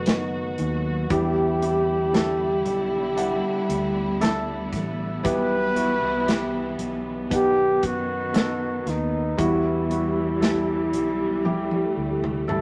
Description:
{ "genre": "pop ballad", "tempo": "58 BPM", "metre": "4/4", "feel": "straight", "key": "E minor", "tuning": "A4 = 438 Hz", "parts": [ { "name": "mellow flugelhorn", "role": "melody", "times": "0.0-12.5 s", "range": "D#4 to B4", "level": "-28 LUFS", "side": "equal", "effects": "none" }, { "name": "felt-muted upright piano", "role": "accompaniment", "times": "0.0-12.6 s", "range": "B2 to F#5", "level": "-30 LUFS", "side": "equal", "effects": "none" }, { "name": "warm studio string section", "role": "sustained chords", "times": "0.0-12.6 s", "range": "D3 to F#4", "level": "-32 LUFS", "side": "equal", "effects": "none" }, { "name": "fretless electric bass", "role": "bass", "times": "0.0-12.6 s", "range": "F#1 to F#2", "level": "-32 LUFS", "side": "equal", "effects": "none" }, { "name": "natural country drum kit", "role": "drums", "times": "0.1-12.6 s", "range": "hi-hat, kick drum, snare drum, toms", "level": "-28 LUFS", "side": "equal", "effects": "none" } ], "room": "moderate studio reverb, RT60 0.8 s", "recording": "none", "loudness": "-24 LUFS", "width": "mono", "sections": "0.0-12.6 A section", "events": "drum fill 11.5-12.6; felt piano fill 12.0-12.6", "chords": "0.0 B; 1.1 Em7; 5.2 Em/B; 7.3 B; 9.4 Emadd9" }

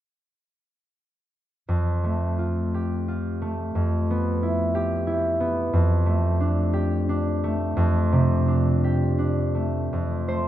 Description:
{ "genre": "classical, solo harp piece", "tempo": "52-62 BPM (dotted quarters)", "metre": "6/8", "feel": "rubato", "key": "F lydian", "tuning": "A4 = 441 Hz", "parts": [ { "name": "concert harp", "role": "solo", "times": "1.7-10.5 s", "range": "F2 to C5", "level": "-21 LUFS", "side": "equal", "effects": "none" } ], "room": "light reverb", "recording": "none", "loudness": "-21 LUFS", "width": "side -12 dB against mid", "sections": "1.7-9.9 A section", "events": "none", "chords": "1.7 Fadd9; 3.8 G13/F; 5.7 F69" }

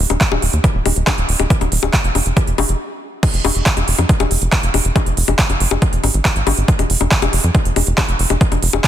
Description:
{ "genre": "psychedelic trance", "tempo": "139 BPM", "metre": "4/4", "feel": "straight", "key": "unclear", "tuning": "A4 = 439 Hz", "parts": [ { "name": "tight sequencer bass", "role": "bass", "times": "0.0-8.8 s", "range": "Eb1 to F2", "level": "-17 LUFS", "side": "equal", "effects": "none" }, { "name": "big-room dance drum kit", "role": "drums", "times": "0.1-8.9 s", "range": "bongos, crash cymbal, handclaps, hi-hat", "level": "-18 LUFS", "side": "left 2 dB", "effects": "overdrive" }, { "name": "electronic kick drum", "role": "drums", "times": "0.2-8.9 s", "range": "none", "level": "-16 LUFS", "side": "equal", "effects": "overdrive" } ], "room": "little or no reverb", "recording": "dense, heavily limited modern master", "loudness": "-13 LUFS", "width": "side -11 dB against mid", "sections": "0.0-3.2 A section; 3.2-8.9 B section", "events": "stop 2.8-3.2; drop 3.2-8.9", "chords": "none" }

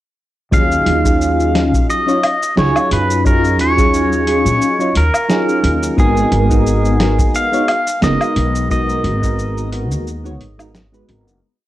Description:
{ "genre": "sunset chillout", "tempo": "88 BPM", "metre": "4/4", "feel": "swing 54% on 16ths", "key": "Eb minor", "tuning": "A4 = 439 Hz", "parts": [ { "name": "pedal steel guitar", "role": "melody", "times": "0.5-9.7 s", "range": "Ab4 to F5", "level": "-18 LUFS", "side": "equal", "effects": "cassette tape, tape echo" }, { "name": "soft electric-piano-like synth keys", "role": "accompaniment", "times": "0.5-11.4 s", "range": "Gb3 to Db5", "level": "-18 LUFS", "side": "equal", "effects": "chorus, phaser, auto-pan, low-pass filter, cassette tape" }, { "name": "upright bass", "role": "bass", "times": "0.5-11.4 s", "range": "Gb1 to Gb2", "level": "-18 LUFS", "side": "equal", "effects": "transformer saturation" }, { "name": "dusty soul sampler-style drum kit", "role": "drums", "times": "0.5-11.4 s", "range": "cabasa, hi-hat, snare drum, woodblock", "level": "-21 LUFS", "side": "equal", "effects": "overdrive" }, { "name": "electronic kick drum", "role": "drums", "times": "0.5-9.4 s", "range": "none", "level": "-16 LUFS", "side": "equal", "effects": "none" } ], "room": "moderate studio reverb, RT60 0.5 s", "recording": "home recording on cassette", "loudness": "-12 LUFS", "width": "side -14 dB against mid", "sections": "0.5-11.4 groove", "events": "fade-out 7.8-11.4", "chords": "0.5 Ebm11; 6.0 Abm9" }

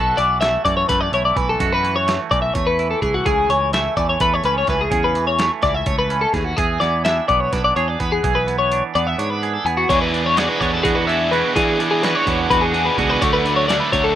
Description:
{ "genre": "math rock and midwest emo", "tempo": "253 BPM (eighths)", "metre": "7/8", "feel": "straight", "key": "unclear", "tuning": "A4 = 440 Hz", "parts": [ { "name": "twangy electric guitar", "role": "accompaniment", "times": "0.0-14.2 s", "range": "B2 to G#4", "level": "-24 LUFS", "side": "right 9 dB", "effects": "lush chorus" }, { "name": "twelve-string electric guitar", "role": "arpeggios", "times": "0.0-14.2 s", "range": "F#4 to E5", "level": "-18 LUFS", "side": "left 3 dB", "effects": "wide subtle chorus" }, { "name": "picked electric bass", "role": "bass", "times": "0.0-14.1 s", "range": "B1 to E3", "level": "-25 LUFS", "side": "right 1 dB", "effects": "none" }, { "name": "boom bap sampler-style drum kit", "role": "drums", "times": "0.2-14.0 s", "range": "hi-hat, kick drum, snare drum", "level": "-26 LUFS", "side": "equal", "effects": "none" }, { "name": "biting overdriven guitar", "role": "riff", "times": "9.9-14.2 s", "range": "D3 to G#4", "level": "-20 LUFS", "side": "right 2 dB", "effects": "none" } ], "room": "digital ambience", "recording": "rough home demo mix", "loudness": "-16 LUFS", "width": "side -11 dB against mid", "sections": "0.0-9.9 A section; 9.9-14.2 B section", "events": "kick and snare drop out 8.5-9.9", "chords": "0.0 B7sus4; 3.3 Amaj7/C#; 6.6 E7; 9.9 E9; 13.2 Dmaj7" }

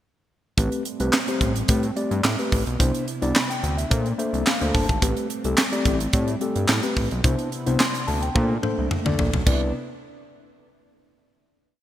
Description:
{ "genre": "early-eighties boogie funk", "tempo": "108 BPM", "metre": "4/4", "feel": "straight", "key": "C major", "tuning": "A4 = 438 Hz", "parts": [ { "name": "mellow tine electric piano", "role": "accompaniment", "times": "0.6-9.7 s", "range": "A3 to C6", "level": "-26 LUFS", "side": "left 2 dB", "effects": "slow stereo tremolo" }, { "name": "chorused pulse-width pad", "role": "sustained chords", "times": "0.6-9.7 s", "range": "C3 to E4", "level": "-32 LUFS", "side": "equal", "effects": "none" }, { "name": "fat analog bass", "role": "bass", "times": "0.6-9.7 s", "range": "G1 to Bb2", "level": "-25 LUFS", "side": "equal", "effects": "none" }, { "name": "tight funk drum kit", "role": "drums", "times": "0.6-9.6 s", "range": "crash cymbal, handclaps, hi-hat, kick drum, snare drum, toms", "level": "-22 LUFS", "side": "right 1 dB", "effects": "gated reverb" } ], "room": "light reverb, small room ambience", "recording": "bright 1980s-style digital production", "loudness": "-20 LUFS", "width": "side -12 dB against mid", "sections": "0.6-9.5 verse; 9.5-11.7 final chord", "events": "tine electric piano fill 3.9-5.0; drum fill 8.4-9.5", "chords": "0.6 Am9; 2.8 Cmaj9; 3.9 Bbmaj9; 5.0 Am9; 7.2 Cmaj9; 8.4 Bbmaj9; 9.5 Cmaj9" }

